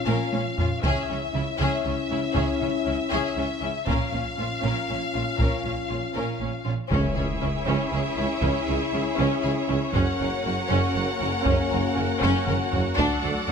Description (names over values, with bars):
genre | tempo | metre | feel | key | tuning
cinematic, epic orchestral film score | 79 BPM (dotted quarters) | 6/8 | straight | C# phrygian | A4 = 437 Hz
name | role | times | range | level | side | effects
bright symphonic violin section | melody | 0.0-13.5 s | E5 to F#5 | -31 LUFS | left 4 dB | none
dark French horn section | sustained chords | 0.0-13.5 s | F#3 to E#4 | -31 LUFS | left 6 dB | none
clear studio violin section | second line | 0.1-13.5 s | C#4 to A#4 | -32 LUFS | left 3 dB | none
warm symphonic viola section | accompaniment | 0.1-13.5 s | C#4 to D4 | -32 LUFS | right 1 dB | none
rich chamber double bass section | bass | 0.1-13.5 s | F#1 to D2 | -31 LUFS | right 4 dB | none
warm symphonic cello section | bass | 0.1-13.5 s | D2 to C#3 | -31 LUFS | right 3 dB | none
taiko ensemble | drums | 0.1-13.5 s | none | -29 LUFS | equal | none
rich symphonic string section | sustained chords | 6.9-13.5 s | A3 to D5 | -30 LUFS | equal | none
clear tuba | bass | 6.9-13.5 s | F#1 to D2 | -32 LUFS | right 5 dB | none
timpani | percussion | 6.9-7.6 s | C#3 | -32 LUFS | left 2 dB | none
impact | sound effects | 6.9-8.4 s | none | -34 LUFS | left 1 dB | none
room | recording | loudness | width
light reverb | close, detailed microphones | -22 LUFS | side -6 dB against mid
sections
0.0-6.9 A section; 6.9-13.5 B section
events
build-up 0.0-6.9; drum fill 0.1-0.8, 12.2-13.0; impact 6.9-8.4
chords
0.0 A#m; 0.8 C#m; 3.9 A#m; 6.9 C#m; 9.9 F#; 13.0 D